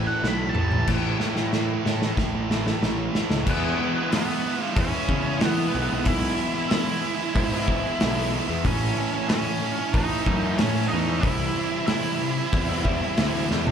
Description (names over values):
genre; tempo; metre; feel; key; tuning
quiet-loud alternative rock; 93 BPM; 4/4; straight; E major from 3.5 s; A4 = 443 Hz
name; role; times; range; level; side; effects
octave-fuzz lead guitar; melody; 0.0-13.5 s; B3 to B5; -28 LUFS; right 1 dB; distortion, slapback echo
biting overdriven guitar; riff; 0.0-13.7 s; A2 to E4; -28 LUFS; right 12 dB; slapback echo
fuzz guitar; riff; 0.0-13.7 s; A2 to E4; -31 LUFS; left 12 dB; distortion, slapback echo
fuzz picked electric bass; bass; 0.0-13.7 s; A1 to E3; -27 LUFS; left 1 dB; overdrive
loose indie drum kit; drums; 0.2-13.7 s; crash cymbal, hi-hat, kick drum, snare drum, toms; -26 LUFS; left 1 dB; none
room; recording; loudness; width
small room ambience; live gig heard through the venue's PA, club reverb; -21 LUFS; side -8 dB against mid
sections
0.9-3.5 A section; 3.5-13.7 B section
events
drum fill 0.2-0.9, 0.9-3.5, 13.5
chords
0.0 A5; 3.5 E; 8.6 A; 11.2 C